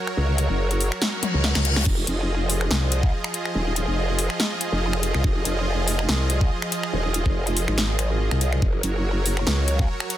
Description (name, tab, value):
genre	heavy wobble dubstep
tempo	142 BPM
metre	4/4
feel	swing 54% on 16ths, half-time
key	F phrygian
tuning	A4 = 439 Hz
part	supersaw pad	sustained chords	0.0-10.2 s	F3 to Eb5	-28 LUFS	right 2 dB	sidechain pumping
part	big-room dance drum kit	drums	0.1-10.2 s	crash cymbal, finger snaps, hi-hat, snare drum, toms	-26 LUFS	left 1 dB	none
part	growl bass	bass	0.2-9.9 s	Eb1 to Db2	-23 LUFS	equal	chorus, overdrive
part	reverse cymbal	sound effects	1.2-1.9 s	none	-28 LUFS	left 4 dB	none
part	electronic kick drum	drums	1.9-9.9 s	none	-22 LUFS	equal	none
room	digital ambience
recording	dense, heavily limited modern master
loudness	-20 LUFS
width	side -12 dB against mid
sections	0.0-10.2 A section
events	reverse cymbal 1.2-1.9; drum fill 1.2-1.9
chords	0.0 Gb; 1.9 Fm7; 8.6 Gb